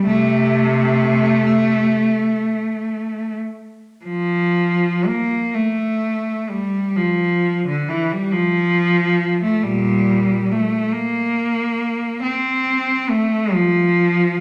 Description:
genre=classical, free, expressive piece for unaccompanied cello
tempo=22-47 BPM (dotted quarters)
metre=6/8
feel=rubato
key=F major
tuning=A4 = 439 Hz
part: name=clear cello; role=solo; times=0.0-14.4 s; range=Bb2 to C4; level=-18 LUFS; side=equal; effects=none
room=wet recital hall reverb, RT60 1.5 s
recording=none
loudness=-19 LUFS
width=mono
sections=0.0-4.1 A section; 4.1-14.4 B section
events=none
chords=none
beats=| 0.07 1.92 | 4.07 5.57 | 6.97 8.33 | 9.63 10.94 | 12.23 13.54

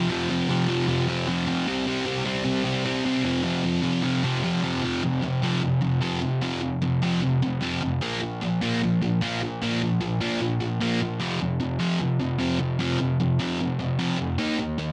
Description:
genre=punk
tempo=151 BPM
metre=4/4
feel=straight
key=unclear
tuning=A4 = 437 Hz
part: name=sludgy distorted guitar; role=solo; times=0.0-14.9 s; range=F2 to Eb4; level=-25 LUFS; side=equal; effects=overdrive
room=light reverb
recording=dense, heavily limited modern master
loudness=-25 LUFS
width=mono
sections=0.0-4.8 A section; 4.8-14.9 B section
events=none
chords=0.0 F5; 1.7 C5; 3.2 F5; 8.0 Bb5; 11.2 F5; 14.4 Eb5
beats=| 0.09 0.48 0.88 1.27 | 1.67 2.06 2.46 2.85 | 3.25 3.64 4.04 4.43 | 4.83 5.23 5.63 6.03 | 6.42 6.82 7.22 7.62 | 8.02 8.42 8.82 9.21 | 9.61 10.01 10.41 10.81 | 11.21 11.61 12.01 12.40 | 12.80 13.20 13.60 13.99 | 14.39 14.79

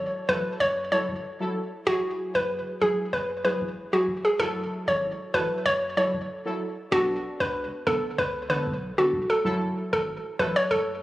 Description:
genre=dancehall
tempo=95 BPM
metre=4/4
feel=straight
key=F# minor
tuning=A4 = 440 Hz
part: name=hollow square pluck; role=melody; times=0.0-10.9 s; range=F#4 to C#5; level=-24 LUFS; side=equal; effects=chorus, tape echo
part: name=synth brass stab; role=accompaniment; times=0.0-10.7 s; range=D3 to A4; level=-31 LUFS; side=equal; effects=chorus
part: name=punchy sub bass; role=bass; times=0.0-11.0 s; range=E1 to C#2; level=-38 LUFS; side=equal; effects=none
room=moderate lush hall reverb, RT60 2.4 s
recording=recorded on a phone in the room, studio ambience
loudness=-24 LUFS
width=side -16 dB against mid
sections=0.0-9.4 A section; 9.4-11.0 B section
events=none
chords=0.0 F#m7; 1.9 Eadd9; 4.4 F#m7; 6.9 Bm7; 9.4 F#m7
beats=0.60 1.24 | 1.87 2.50 3.13 3.76 | 4.39 5.03 5.66 6.29 | 6.92 7.55 8.18 8.81 | 9.45 10.08 10.71

